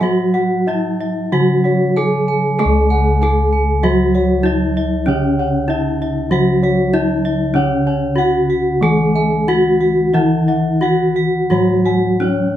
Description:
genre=Javanese gamelan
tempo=95 BPM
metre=4/4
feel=uneven beats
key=unclear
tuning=A4 = 444 Hz
part: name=gamelan-type bronze metallophone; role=melody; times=0.0-12.6 s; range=C#4 to G#4+20c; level=-17 LUFS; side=left 1 dB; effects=none
part: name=gamelan-type bronze metallophone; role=accompaniment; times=0.0-12.6 s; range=C#3 to G#3+20c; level=-20 LUFS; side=right 2 dB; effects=none
part: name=gamelan-type bossed gongs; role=arpeggios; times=0.0-12.6 s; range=C#5 to G#5+20c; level=-26 LUFS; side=left 2 dB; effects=none
part: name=gamelan-type bronze metallophone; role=arpeggios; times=0.0-12.6 s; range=C#5 to G#5+20c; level=-23 LUFS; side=right 3 dB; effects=none
part: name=gamelan-type bossed gongs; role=bass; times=0.0-12.6 s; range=C#2 to G#4+20c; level=-20 LUFS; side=left 1 dB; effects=none
room=moderate studio reverb, RT60 0.5 s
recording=band playing live in one room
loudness=-13 LUFS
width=side -11 dB against mid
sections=0.0-2.6 A section; 2.6-12.6 B section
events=none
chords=none

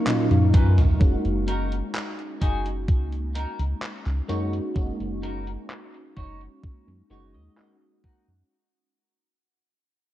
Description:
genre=vaporwave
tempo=64 BPM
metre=4/4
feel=straight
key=F# major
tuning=A4 = 440 Hz
part: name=FM electric piano with soft pad layer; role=accompaniment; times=0.0-8.5 s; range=F#3 to F#4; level=-29 LUFS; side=equal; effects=ensemble chorus, tape echo
part: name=soft string machine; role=sustained chords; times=0.0-1.0 s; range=D#4 to C#6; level=-39 LUFS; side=right 1 dB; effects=ensemble chorus, vintage 12-bit sampler grit
part: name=gated 80s digital drum machine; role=drums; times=0.1-8.5 s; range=handclaps, hi-hat, toms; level=-25 LUFS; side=equal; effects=gated reverb, low-pass filter on hats, low-pass filter on snare, low-pass filter on toms, low-pass filter on room
part: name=chorused synth bass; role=bass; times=0.3-8.4 s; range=F#1 to F#2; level=-25 LUFS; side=equal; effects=none
part: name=clean electric guitar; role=riff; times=0.5-8.5 s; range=C#4 to F#5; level=-36 LUFS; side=left 2 dB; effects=lush chorus, low-pass filter, tape echo
part: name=electronic kick drum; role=drums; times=0.5-8.2 s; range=none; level=-20 LUFS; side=equal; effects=none
room=light reverb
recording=dark, warm production, cassette tape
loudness=-22 LUFS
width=side -14 dB against mid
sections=0.0-1.0 A section; 1.0-8.5 B section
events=drum fill 0.1-1.0; fade-out 1.0-8.5; clean electric guitar fill 6.6-8.5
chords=0.0 Bmaj9#11; 1.0 F#6

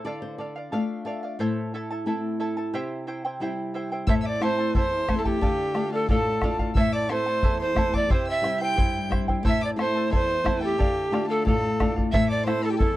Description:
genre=andean folk, Andean ensemble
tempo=90 BPM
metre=2/4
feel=straight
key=A minor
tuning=A4 = 441 Hz
part: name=charango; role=accompaniment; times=0.0-13.0 s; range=E4 to A5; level=-32 LUFS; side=right 2 dB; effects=none
part: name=flamenco guitar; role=accompaniment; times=0.0-13.0 s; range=E2 to F5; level=-28 LUFS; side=left 2 dB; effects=none
part: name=breathy bright pan flute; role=melody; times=4.1-13.0 s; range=G4 to G5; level=-26 LUFS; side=right 2 dB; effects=tape echo
part: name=rich violin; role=second line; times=4.1-13.0 s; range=G5 to G6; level=-32 LUFS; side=left 2 dB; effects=none
part: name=bombo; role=percussion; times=4.1-13.0 s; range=none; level=-25 LUFS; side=equal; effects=none
room=little or no reverb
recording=dry, close 1970s-style studio recording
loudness=-22 LUFS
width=side -15 dB against mid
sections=0.0-4.1 A section; 4.1-13.0 B section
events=nylon-string guitar fill 0.0-1.4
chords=0.1 Dm; 1.4 Am; 2.7 C; 4.1 Am; 5.4 Dm; 6.8 Am; 8.1 C; 9.4 Am; 10.8 Dm; 12.1 Am

